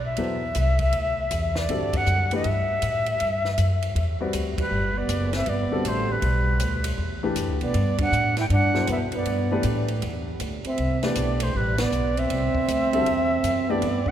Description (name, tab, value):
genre	modal jazz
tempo	158 BPM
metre	4/4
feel	swing 65% on 8ths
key	unclear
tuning	A4 = 440 Hz
part	silver concert flute	melody	0.0-14.1 s	B4 to G5	-26 LUFS	equal	none
part	upright bass	bass	0.0-14.1 s	F#1 to A2	-26 LUFS	equal	none
part	warm baby grand piano	accompaniment	0.2-13.8 s	B2 to D5	-31 LUFS	left 3 dB	none
part	compact cocktail drum kit	drums	0.2-14.1 s	hi-hat, kick drum, ride cymbal, snare drum	-34 LUFS	equal	none
part	breathy trombone	second line	4.6-14.1 s	G3 to E4	-28 LUFS	right 3 dB	none
room	wet cathedral reverb, RT60 5.0 s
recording	recorded in a church or concert hall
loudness	-21 LUFS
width	side -10 dB against mid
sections	0.0-14.1 A section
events	band accent 1.9, 4.5, 7.9, 11.7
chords	0.0 Cmaj9; 4.7 Gmaj9; 10.8 Cmaj9